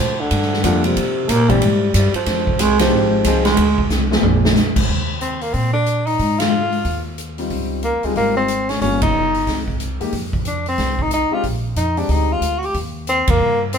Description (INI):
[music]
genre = jazz, small-group swing and bop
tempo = 183 BPM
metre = 4/4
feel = swing 62% on 8ths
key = C minor, Eb major from 4.9 s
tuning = A4 = 440 Hz
[part]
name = growling baritone saxophone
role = second line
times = 0.0-3.9 s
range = C3 to Bb3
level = -18 LUFS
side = right 2 dB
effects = none
[part]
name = upright bass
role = bass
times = 0.0-13.8 s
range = G1 to C3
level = -21 LUFS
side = equal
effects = none
[part]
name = swinging big-band drum kit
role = drums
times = 0.3-13.8 s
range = crash cymbal, hi-hat, kick drum, ride cymbal, snare drum, toms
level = -21 LUFS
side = equal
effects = none
[part]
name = warm grand piano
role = accompaniment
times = 0.6-4.5, 7.4-12.4 s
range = E3 to Ab4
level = -22 LUFS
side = left 4 dB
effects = none
[part]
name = mellow tenor saxophone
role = melody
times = 5.2-13.8 s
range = Ab3 to G4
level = -19 LUFS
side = left 1 dB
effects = none
[sound]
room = light reverb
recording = band playing live in one room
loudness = -15 LUFS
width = side -7 dB against mid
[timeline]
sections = 0.0-4.9 A section; 4.9-13.8 B section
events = baritone saxophone solo 0.0-4.9; drum fill 3.9-4.6; band accent 6.4, 9.0, 13.2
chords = 0.0 Gm7; 1.0 C7(no3); 2.3 Fm7; 3.6 Dm7b5; 4.2 Bb7; 4.9 Eb5; 6.2 Ab5; 7.5 Dbmaj9#11; 8.8 Gm7b5; 9.5 C7alt; 10.1 F5; 11.4 Bb13; 12.7 Eb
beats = 0.31 0.64 | 0.96 1.29 1.61 1.94 | 2.27 2.60 2.92 3.25 | 3.57 3.90 4.23 4.55 | 4.88 5.21 5.54 5.86 | 6.19 6.52 6.85 7.17 | 7.50 7.83 8.16 8.49 | 8.81 9.14 9.47 9.80 | 10.12 10.45 10.78 11.11 | 11.43 11.76 12.09 12.42 | 12.74 13.07 13.40 13.73